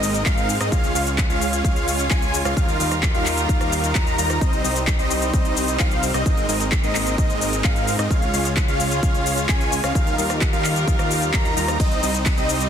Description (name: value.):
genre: EDM, festival progressive house.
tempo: 130 BPM.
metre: 4/4.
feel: straight.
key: Ab major.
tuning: A4 = 439 Hz.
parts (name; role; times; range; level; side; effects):
rich chamber string section; sustained chords; 0.0-12.7 s; Eb3 to Bb4; -30 LUFS; equal; sidechain pumping.
wide unison lead; arpeggios; 0.0-12.7 s; Eb5 to Bb5; -26 LUFS; equal; sidechain pumping, ping-pong delay.
supersaw chords; riff; 0.0-12.7 s; G3 to Bb5; -25 LUFS; right 1 dB; sidechain pumping, ping-pong delay.
fat analog bass; bass; 0.0-12.7 s; Ab1 to Ab2; -26 LUFS; equal; sidechain pumping.
big-room dance drum kit; drums; 0.0-12.7 s; cabasa, handclaps, hi-hat, ride cymbal, rim click; -25 LUFS; left 2 dB; none.
electronic kick drum; drums; 0.3-12.4 s; none; -21 LUFS; equal; overdrive.
room: light reverb, digital ambience.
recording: dense, heavily limited modern master.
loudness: -18 LUFS.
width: side -8 dB against mid.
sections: 0.0-12.7 A section.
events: none.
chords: 0.0 Abadd9; 0.7 Db; 2.6 Ebadd9; 4.4 Cm; 6.3 Abadd9; 8.1 Db; 10.0 Ebadd9; 11.8 Cm.